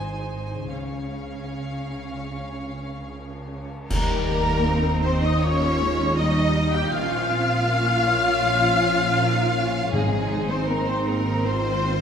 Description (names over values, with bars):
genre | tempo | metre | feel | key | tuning
cinematic, emotional film score for orchestra | 78 BPM | 4/4 | uneven beats, rubato | unclear | A4 = 440 Hz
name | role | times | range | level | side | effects
rich studio violin section | melody | 0.0-12.0 s | Ab4 to Ab5 | -29 LUFS | left 1 dB | none
rich studio viola section | accompaniment | 0.0-12.0 s | F3 to Db5 | -30 LUFS | right 2 dB | none
concert harp | arpeggios | 0.0-12.0 s | Ab2 to F5 | -31 LUFS | left 5 dB | none
warm studio cello section | bass | 0.0-12.0 s | Ab2 to G4 | -29 LUFS | right 1 dB | none
warm studio double bass section | bass | 0.0-12.0 s | Ab1 to Eb2 | -27 LUFS | right 1 dB | none
cymbal swell, clash cymbals and concert bass drum | percussion | 0.7-5.4 s | none | -31 LUFS | equal | none
mellow flute section | second line | 3.9-12.0 s | Ab5 to G6 | -26 LUFS | left 3 dB | none
warm studio violin section | second line | 3.9-12.0 s | Ab4 to G5 | -31 LUFS | left 2 dB | none
timpani | percussion | 9.9-11.0 s | Ab2 | -29 LUFS | equal | none
room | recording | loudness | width
wet scoring stage reverb, RT60 2.0 s | none | -20 LUFS | side -7 dB against mid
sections
0.0-3.9 A section; 3.9-12.0 B section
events
band accent 3.9-4.7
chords
0.0 Ab; 0.7 Db; 3.9 Eb; 6.9 Bbm; 9.9 Ab